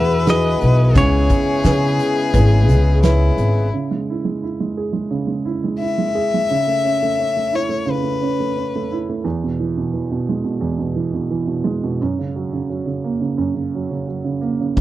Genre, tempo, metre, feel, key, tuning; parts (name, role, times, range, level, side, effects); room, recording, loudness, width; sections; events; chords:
acoustic folk-pop ballad; 87 BPM; 4/4; straight; C# minor; A4 = 443 Hz
direct-recorded clean electric guitar; melody; 0.0-3.0 s; C#5 to E5; -24 LUFS; right 1 dB; tremolo
clear violin; second line; 0.0-8.9 s; E4 to E5; -21 LUFS; left 5 dB
warm baby grand piano; accompaniment; 0.0-14.8 s; E2 to B4; -21 LUFS; right 4 dB
pedal harmonium; sustained chords; 0.0-3.7 s; C#3 to G#4; -23 LUFS; left 2 dB
upright bass; bass; 0.0-3.7, 14.8 s; G#1 to C#3; -15 LUFS; equal
loose indie drum kit; drums; 0.3-3.5, 14.8 s; hi-hat, kick drum, snare drum; -18 LUFS; equal
little or no reverb; -16 LUFS; side -14 dB against mid
0.0-3.7 A section; 3.7-14.8 B section
violin solo 3.7-14.8
0.0 Eadd9; 1.0 C#m7; 3.7 C#m; 6.5 A/C#; 9.3 E; 12.0 F#